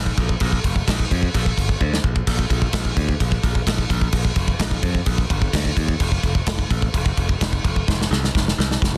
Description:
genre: heavy metal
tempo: 128 BPM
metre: 4/4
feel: straight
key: unclear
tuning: A4 = 445 Hz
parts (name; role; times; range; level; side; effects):
- modern bright picked electric bass; bass; 0.0-9.0 s; F1 to F2; -25 LUFS; equal; none
- modern studio drum kit; drums; 0.1-8.9 s; crash cymbal, kick drum, snare drum, splash cymbal; -23 LUFS; equal; none
room: little or no reverb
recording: dense, heavily limited modern master, lossy compression artefacts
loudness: -21 LUFS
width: mono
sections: 0.0-9.0 A section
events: drum fill 1.8-2.3, 7.9-9.0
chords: none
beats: | 0.41 0.87 1.34 1.80 | 2.27 2.74 3.21 3.67 | 4.14 4.61 5.07 5.54 | 6.01 6.47 6.94 7.41 | 7.88 8.35 8.81

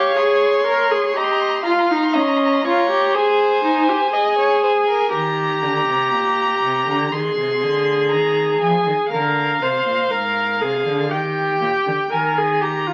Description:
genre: classical, baroque-style fugue for string quartet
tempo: 60 BPM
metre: 4/4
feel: straight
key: Ab major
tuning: A4 = 440 Hz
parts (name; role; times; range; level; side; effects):
- rich violin; melody; 0.0-12.9 s; F5 to C6; -25 LUFS; equal; none
- warm violin; second line; 0.0-5.1 s; Bb4 to F5; -23 LUFS; equal; none
- warm viola; accompaniment; 0.0-12.9 s; Db4 to C5; -20 LUFS; equal; none
- dark cello; bass; 5.1-12.9 s; Ab2 to F3; -28 LUFS; equal; none
room: wet studio reverb, RT60 0.7 s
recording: very old 78 rpm record, vinyl crackle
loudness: -18 LUFS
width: mono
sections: 0.0-12.9 A section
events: none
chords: 0.0 Db5; 1.2 Eb7; 3.1 Ab; 5.1 Eb; 7.1 Ab; 9.1 Bb7; 11.1 Eb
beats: 0.17 | 1.16 2.15 3.15 4.13 | 5.12 6.12 7.12 8.12 | 9.12 10.12 11.12 12.12

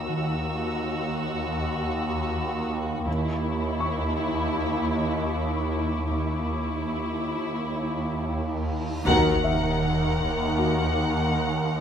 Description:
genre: cinematic, suspense film score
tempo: 80 BPM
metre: 4/4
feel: straight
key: Eb phrygian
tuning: A4 = 440 Hz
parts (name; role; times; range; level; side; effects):
- muted studio violin section; melody; 0.0-11.8 s; Fb4 to Gb5; -30 LUFS; left 2 dB; none
- muted studio cello section; bass; 0.0-11.8 s; Eb2; -30 LUFS; right 2 dB; none
- swarming drone; drone; 0.0-11.8 s; Eb2; -30 LUFS; equal; built-in reverb, phaser
- clear grand piano; texture; 0.0-11.8 s; Fb5 to Db6; -36 LUFS; left 3 dB; none
- muted studio violin section; texture; 0.0-8.7 s; Bb5 to Fb6; -38 LUFS; left 3 dB; none
- muted studio double bass section; bass; 0.1-11.8 s; Eb2; -30 LUFS; right 2 dB; none
- reverse cymbal and sub drop; sound effects; 8.8-11.8 s; none; -35 LUFS; equal; none
- muted studio violin section; second line; 9.1-11.8 s; Bb4; -30 LUFS; left 4 dB; none
- muted studio viola section; accompaniment; 9.1-11.8 s; Eb3; -29 LUFS; right 2 dB; none
- dark French horn section; sustained chords; 9.1-10.8 s; Bb3 to Gb4; -30 LUFS; left 5 dB; none
- taiko ensemble; drums; 9.1-10.5 s; none; -38 LUFS; equal; none
- timpani; percussion; 9.1-10.2 s; none; barely audible; none; none
room: moderate concert hall reverb, RT60 2.0 s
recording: close, detailed microphones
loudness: -24 LUFS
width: side -8 dB against mid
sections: 0.0-9.1 A section; 9.1-11.8 B section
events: reverse cymbal 8.8; band accent 9.1-9.8; impact 9.1-11.8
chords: 0.0 Ebm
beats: | 0.07 0.82 1.57 2.32 | 3.07 3.82 4.57 5.32 | 6.07 6.82 7.57 8.32 | 9.07 9.82 10.57 11.32

